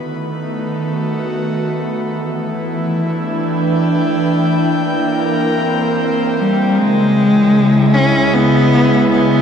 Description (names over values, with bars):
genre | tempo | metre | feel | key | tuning
ambient | 77 BPM | 3/4 | straight | unclear | A4 = 440 Hz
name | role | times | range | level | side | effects
airy breathy pad | sustained chords | 0.0-9.4 s | C#3 to G5 | -16 LUFS | equal | chorus
organ-like drone | drone | 2.7-6.8 s | E3 to E4 | -21 LUFS | equal | ensemble chorus, built-in reverb
dark cello | melody | 6.4-9.4 s | G3 to C#4 | -12 LUFS | left 1 dB | none
felt-muted upright piano | arpeggios | 6.8-9.4 s | F#3 | -40 LUFS | equal | none
warm studio cello section | bass | 6.8-9.4 s | C#2 | -35 LUFS | equal | none
room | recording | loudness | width
wet huge ambient reverb, RT60 7.9 s | dark, warm production | -13 LUFS | side -7 dB against mid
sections
0.0-6.8 A section; 6.8-9.4 B section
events
fade-in on analog synth pad 0.0-6.8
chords
0.0 B7; 2.1 G69; 4.4 C5; 6.8 C#m7